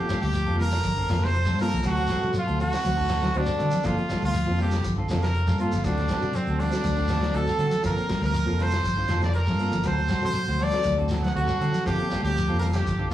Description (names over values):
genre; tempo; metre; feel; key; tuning
afrobeat; 120 BPM; 4/4; straight; G minor; A4 = 440 Hz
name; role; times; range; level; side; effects
brilliant trumpet; melody; 0.0-13.1 s; C4 to F#5; -28 LUFS; equal; none
brilliant trumpet; second line; 0.0-13.1 s; C4 to F#5; -36 LUFS; right 2 dB; none
barky reed electric piano; accompaniment; 0.0-13.1 s; Bb3 to C5; -35 LUFS; left 1 dB; fast tremolo
electric guitar at the edge of break-up; arpeggios; 0.0-13.1 s; D3 to G3; -32 LUFS; left 2 dB; tape echo
semi-hollow electric guitar; stabs; 0.0-13.1 s; A3 to A4; -34 LUFS; right 4 dB; none
vintage muted fingered electric bass; bass; 0.1-13.1 s; F1 to D3; -26 LUFS; equal; none
damped 70s drum kit; drums; 0.1-13.1 s; hi-hat, kick drum, snare drum; -36 LUFS; equal; none
congas; percussion; 0.1-12.9 s; none; -35 LUFS; right 1 dB; none
shekere; percussion; 0.1-13.1 s; none; -35 LUFS; equal; none
room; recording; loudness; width
wet stone room reverb, RT60 1.2 s; rough rehearsal-room recording, warm saturation, vinyl crackle, studio reverb; -22 LUFS; side -12 dB against mid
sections
0.0-13.1 A section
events
none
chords
0.0 Gm11; 1.8 D7; 3.8 Gm11; 5.8 D7; 7.8 Gm11; 9.9 D7; 11.9 Gm11